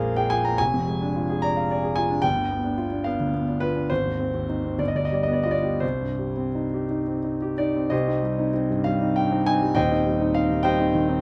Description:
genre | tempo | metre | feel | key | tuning
classical, romantic character piece for solo piano | 54-75 BPM (dotted quarters) | 6/8 | rubato | C minor | A4 = 435 Hz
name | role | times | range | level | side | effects
warm concert grand piano | solo | 0.0-11.2 s | Eb1 to Bb5 | -24 LUFS | equal | none
room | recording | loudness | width
little or no reverb | close, detailed microphones | -24 LUFS | mono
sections
0.0-7.9 A section; 7.9-11.2 B section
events
none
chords
0.0 Bb7; 0.6 Ddim/F; 2.2 G7; 3.9 Ab; 4.8 G7; 5.8 Cm; 9.8 Cm/Eb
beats
| 0.59 1.43 | 2.23 3.06 | 3.90 4.80 | 5.82 6.91 | 7.92 8.87 | 9.77 10.64

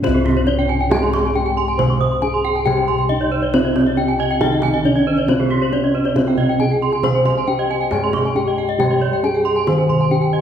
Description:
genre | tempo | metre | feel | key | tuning
Balinese gamelan | 137 BPM | 4/4 | straight | C pelog | A4 = 439 Hz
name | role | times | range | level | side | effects
gamelan-type bronze metallophone | melody | 0.0-10.4 s | C4 to C5 | -20 LUFS | equal | none
gamelan-type bronze metallophone | accompaniment | 0.0-10.4 s | C3 to C4 | -27 LUFS | left 2 dB | none
gamelan-type bronze metallophone | arpeggios | 0.0-10.2 s | C5 to C6 | -23 LUFS | left 4 dB | none
gamelan-type bossed gongs | bass | 0.0-10.4 s | C2 to C5 | -21 LUFS | equal | none
kendang | percussion | 0.0-10.2 s | none | -24 LUFS | right 2 dB | none
gamelan-type bronze metallophone | arpeggios | 0.1-10.4 s | G4 to Eb6 | -24 LUFS | right 5 dB | slapback echo
room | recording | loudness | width
wet recital hall reverb, RT60 1.8 s | heard from further back in the room | -15 LUFS | side -9 dB against mid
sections
0.0-10.4 A section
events
none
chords
none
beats
| 0.03 0.47 0.90 1.34 | 1.78 2.22 2.66 3.10 | 3.53 3.97 4.41 4.85 | 5.29 5.72 6.16 6.60 | 7.04 7.48 7.92 8.36 | 8.79 9.23 9.67 10.11

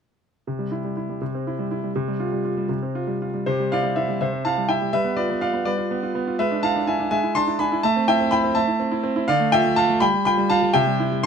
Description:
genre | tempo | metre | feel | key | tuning
classical-period piano sonatina | 82 BPM (dotted quarters) | 6/8 | rubato | C major | A4 = 445 Hz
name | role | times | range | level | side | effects
clear concert grand piano | solo | 0.5-11.3 s | C3 to C6 | -20 LUFS | equal | none
room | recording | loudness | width
light reverb | close, detailed microphones | -20 LUFS | side -6 dB against mid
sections
0.5-3.5 A section; 3.5-11.3 B section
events
none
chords
0.5 C; 1.9 Csus4; 3.5 C; 4.9 G7; 6.4 E7/G#; 7.8 Am; 9.3 Dm; 10.0 G9; 10.7 C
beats
| 0.47 1.21 | 1.94 2.69 | 3.46 4.21 | 4.94 5.66 | 6.40 7.11 | 7.84 8.56 | 9.28 10.01 | 10.74

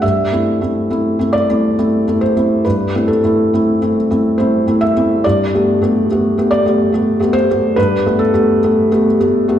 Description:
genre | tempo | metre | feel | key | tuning
neoclassical minimalist piano | 70 BPM | 3/4 | rubato | unclear | A4 = 441 Hz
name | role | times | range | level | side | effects
felt-muted upright piano | solo | 0.0-9.6 s | G2 to E5 | -12 LUFS | equal | none
room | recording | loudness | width
wet recital hall reverb, RT60 1.3 s | recorded in a church or concert hall | -12 LUFS | side -10 dB against mid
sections
0.0-9.6 A section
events
none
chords
0.0 Am/G; 5.2 Gadd9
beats
| 0.02 0.90 1.78 | 2.64 3.52 4.38 | 5.24 6.09 6.93 | 7.78 8.63 9.47

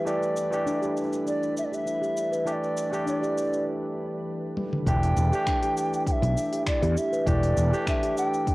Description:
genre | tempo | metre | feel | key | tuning
organic downtempo | 100 BPM | 4/4 | straight | E minor pentatonic | A4 = 441 Hz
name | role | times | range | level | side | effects
reedy bass bansuri | melody | 0.0-8.5 s | D5 to G5 | -28 LUFS | equal | cassette tape, analog delay
barky tine electric piano | accompaniment | 0.0-8.5 s | E3 to G4 | -32 LUFS | right 1 dB | sidechain pumping, analog delay
ethereal airy pad | sustained chords | 0.0-8.5 s | E3 to B4 | -40 LUFS | left 1 dB | ensemble chorus, built-in reverb, vintage 12-bit sampler grit, sidechain pumping
bronze singing bowl | texture | 0.0-3.7 s | G3 to A4 | -44 LUFS | left 1 dB | none
steel tongue drum | arpeggios | 0.1-8.5 s | D4 to B4 | -31 LUFS | equal | none
organic electronic drum kit | drums | 0.1-8.5 s | cabasa, finger snaps, hi-hat, toms | -36 LUFS | equal | cassette tape
fretless electric bass | bass | 4.9-7.7 s | E1 to E2 | -23 LUFS | equal | tube saturation, analog chorus, sidechain pumping
electronic kick drum | drums | 4.9-8.5 s | none | -28 LUFS | equal | cassette tape
room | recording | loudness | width
moderate small room reverb, RT60 0.6 s | home recording on cassette | -24 LUFS | side -20 dB against mid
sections
0.0-4.9 A section; 4.9-8.5 B section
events
filter sweep on steel tongue drum 0.0-4.9; filter sweep on tine electric piano 0.0-4.9; break 3.7-4.9; drum fill 4.6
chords
0.0 Em7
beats
| 0.07 0.67 1.27 1.87 | 2.47 3.07 3.67 4.27 | 4.87 5.47 6.07 6.67 | 7.27 7.87 8.47

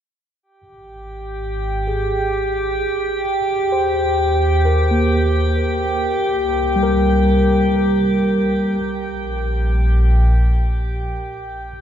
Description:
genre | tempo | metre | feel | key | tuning
ambient | free time | none | none | unclear | A4 = 440 Hz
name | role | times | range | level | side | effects
deep rumbling drone | bass | 1.2-11.5 s | Ab1 to Eb2 | -20 LUFS | equal | built-in reverb, phaser
drifting glass-harmonics texture | texture | 1.1-11.5 s | G4 to G5 | -21 LUFS | equal | chorus, built-in reverb, shimmer reverb
bright tine electric piano | arpeggios | 1.9-8.8 s | G3 to C5 | -21 LUFS | equal | lush chorus, diffuse ambient delay, shimmer reverb
room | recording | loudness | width
wet cathedral reverb, RT60 5.2 s | in a vast, echoing space | -16 LUFS | side -10 dB against mid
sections
0.4-11.5 A section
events
fade-in on tine electric piano 0.4-11.5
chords
0.4 N.C.; 3.2 Ebsus4; 6.0 C5; 8.8 Gm/Bb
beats
free time

